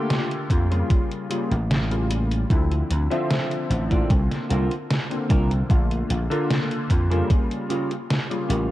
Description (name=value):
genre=vaporwave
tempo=75 BPM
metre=4/4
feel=straight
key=unclear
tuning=A4 = 440 Hz
part: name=mellow alto saxophone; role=melody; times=0.0-1.3 s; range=F4 to G4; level=-36 LUFS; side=left 1 dB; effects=tape echo
part: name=warm electric grand piano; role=accompaniment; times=0.0-8.7 s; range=C#3 to E5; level=-26 LUFS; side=left 1 dB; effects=analog chorus, tape echo
part: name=detuned 8-bit digital drum machine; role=drums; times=0.1-8.7 s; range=hi-hat, snare drum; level=-27 LUFS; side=equal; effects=overdrive
part: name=vintage slap bass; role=bass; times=0.5-8.7 s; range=A1 to F2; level=-22 LUFS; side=equal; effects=none
part: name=electronic kick drum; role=drums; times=0.5-7.5 s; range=none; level=-20 LUFS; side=equal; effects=overdrive
part: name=mellow electric guitar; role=riff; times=2.9-8.7 s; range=C#4 to D5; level=-32 LUFS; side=right 2 dB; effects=analog chorus, tape echo
room=light reverb, digital ambience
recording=cassette tape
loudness=-20 LUFS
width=side -15 dB against mid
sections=0.0-8.7 A section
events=none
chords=0.0 Bbmaj7; 0.9 A7b9b13; 2.5 Dm9; 4.1 C9sus4; 5.7 Bbmaj7; 7.3 A7b9b13 (rootless)